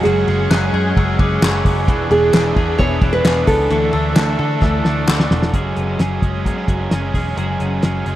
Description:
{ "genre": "jangly indie pop", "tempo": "131 BPM", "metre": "4/4", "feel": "straight", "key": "F# minor", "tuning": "A4 = 440 Hz", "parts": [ { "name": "nylon-string guitar", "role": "melody", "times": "0.0-4.1 s", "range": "G#4 to C#5", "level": "-18 LUFS", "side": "right 2 dB", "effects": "none" }, { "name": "biting overdriven guitar", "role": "accompaniment", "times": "0.0-8.2 s", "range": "D3 to A4", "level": "-23 LUFS", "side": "right 4 dB", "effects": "none" }, { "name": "soft string machine", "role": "sustained chords", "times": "0.0-5.5 s", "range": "G#4 to C#6", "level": "-28 LUFS", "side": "right 1 dB", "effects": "ensemble chorus" }, { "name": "twelve-string electric guitar", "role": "arpeggios", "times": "0.0-8.2 s", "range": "E3 to A4", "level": "-24 LUFS", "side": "left 5 dB", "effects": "analog chorus, tape echo" }, { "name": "vintage muted picked electric bass", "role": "bass", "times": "0.1-8.2 s", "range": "E1 to D3", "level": "-20 LUFS", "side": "equal", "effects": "none" }, { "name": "cloth-damped thuddy drum kit", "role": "drums", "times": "0.1-8.2 s", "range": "hi-hat, kick drum, ride cymbal, snare drum", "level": "-16 LUFS", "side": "equal", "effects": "none" }, { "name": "glockenspiel with soft plastic mallets", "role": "second line", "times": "0.5-5.5 s", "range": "C#6 to G#6", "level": "-30 LUFS", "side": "left 7 dB", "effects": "none" }, { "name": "group handclap", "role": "percussion", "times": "0.5-5.2 s", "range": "none", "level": "-26 LUFS", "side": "left 2 dB", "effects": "none" } ], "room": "studio reverb", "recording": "dry, close 1970s-style studio recording", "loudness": "-14 LUFS", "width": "side -14 dB against mid", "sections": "0.0-5.5 A section; 5.5-8.2 B section", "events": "drum fill 4.6-5.5", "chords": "0.0 F#sus2; 1.9 E7; 3.7 Dsus2; 5.5 F#sus2" }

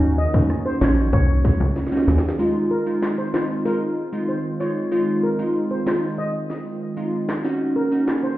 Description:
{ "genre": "dancehall", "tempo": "95 BPM", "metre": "4/4", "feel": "straight", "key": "unclear", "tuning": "A4 = 440 Hz", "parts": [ { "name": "glassy wavetable pluck", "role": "accompaniment", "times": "0.0-8.1 s", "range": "Ab3 to Gb4", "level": "-22 LUFS", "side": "equal", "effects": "chorus" }, { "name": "warm analog pad", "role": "sustained chords", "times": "0.0-8.4 s", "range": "Eb3 to Gb4", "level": "-28 LUFS", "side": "right 2 dB", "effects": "chorus, sidechain pumping" }, { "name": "plucky analog bass", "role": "bass", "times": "0.0-2.2 s", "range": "Bb1 to Eb2", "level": "-19 LUFS", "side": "equal", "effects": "none" }, { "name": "steel pan", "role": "melody", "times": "0.2-8.3 s", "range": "Bb4 to Eb5", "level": "-29 LUFS", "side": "left 1 dB", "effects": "digital delay" }, { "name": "island pop drum kit", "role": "drums", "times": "0.3-8.2 s", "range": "handclaps, hi-hat, kick drum, rim click, snare drum", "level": "-24 LUFS", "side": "equal", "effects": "none" }, { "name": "bongos", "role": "percussion", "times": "0.3-2.2 s", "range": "none", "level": "-30 LUFS", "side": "left 3 dB", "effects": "none" } ], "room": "light reverb, digital ambience", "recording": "heard muffled through a wall, stone room reverb, EQ", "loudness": "-19 LUFS", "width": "side -15 dB against mid", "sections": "0.0-2.4 A section; 2.4-8.4 B section", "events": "drum fill 1.8-2.4", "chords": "0.0 Ebm7; 2.4 Fm7; 7.4 Ebm7" }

